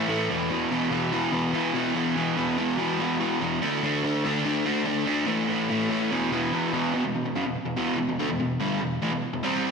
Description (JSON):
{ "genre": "rock", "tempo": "144 BPM", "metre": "4/4", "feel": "straight", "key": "E minor", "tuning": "A4 = 441 Hz", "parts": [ { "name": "crunchy overdriven guitar", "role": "solo", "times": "0.0-9.7 s", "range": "E2 to D4", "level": "-23 LUFS", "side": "equal", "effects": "none" } ], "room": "wet lush hall reverb, RT60 1.8 s, digital ambience", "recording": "big arena sound", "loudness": "-23 LUFS", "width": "side -5 dB against mid", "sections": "0.0-6.9 A section; 6.9-9.7 B section", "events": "none", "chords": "0.3 E5; 3.6 D5; 5.3 A5; 6.1 E5; 6.9 Em" }